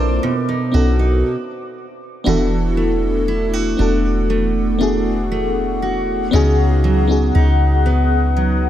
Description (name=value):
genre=R&B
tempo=59 BPM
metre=4/4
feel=straight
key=unclear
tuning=A4 = 445 Hz
part: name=FM electric piano with soft pad layer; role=accompaniment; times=0.0-8.7 s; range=Bb3 to D5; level=-20 LUFS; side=left 2 dB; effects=chorus, tremolo
part: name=deep dark ambient pad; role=sustained chords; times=0.0-8.7 s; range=A3 to D#6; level=-25 LUFS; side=left 3 dB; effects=chorus, built-in reverb
part: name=picked steel-string acoustic guitar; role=arpeggios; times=0.0-8.7 s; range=B2 to C5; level=-22 LUFS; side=right 5 dB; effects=none
part: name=soft 808-style bass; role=bass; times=0.0-8.7 s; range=E1 to C#2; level=-17 LUFS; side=equal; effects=none
room=light reverb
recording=none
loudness=-14 LUFS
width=side -11 dB against mid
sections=0.0-2.3 A section; 2.3-8.7 B section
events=stop 1.2-2.3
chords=0.2 B7; 2.3 E9sus4; 6.3 C#9sus4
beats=0.23 1.25 | 2.26 3.28 4.30 5.32 | 6.33 7.35 8.37